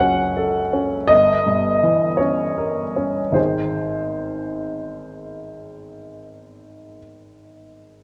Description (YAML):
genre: classical, romantic nocturne for solo piano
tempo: 48-56 BPM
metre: 4/4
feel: rubato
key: unclear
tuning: A4 = 440 Hz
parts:
  - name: warm upright piano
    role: solo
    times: 0.0-8.0 s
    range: F#1 to G#5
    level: -20 LUFS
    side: equal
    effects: none
room: moderate scoring stage reverb, RT60 1.6 s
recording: worn, warbling old tape, cassette tape, warbly pitch drift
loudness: -20 LUFS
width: mono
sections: 0.0-8.0 A section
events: none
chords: 0.0 F#m; 1.1 Gdim7; 3.4 G#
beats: 0.01 1.11 2.22 | 3.38 4.60 5.80 7.00